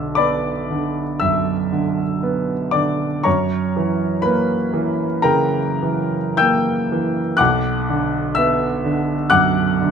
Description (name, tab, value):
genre	classical, romantic nocturne for solo piano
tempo	49-63 BPM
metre	4/4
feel	rubato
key	B minor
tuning	A4 = 441 Hz
part	clear concert grand piano	solo	0.0-9.9 s	B1 to G6	-16 LUFS	equal	none
room	moderate recital hall reverb, RT60 1.6 s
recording	close, detailed microphones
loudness	-17 LUFS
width	side -7 dB against mid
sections	0.0-9.9 A section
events	none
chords	0.0 Bm; 3.3 F#7b9; 7.4 Bm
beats	0.20 1.23 2.23 | 3.26 4.26 5.25 6.39 | 7.40 8.36 9.33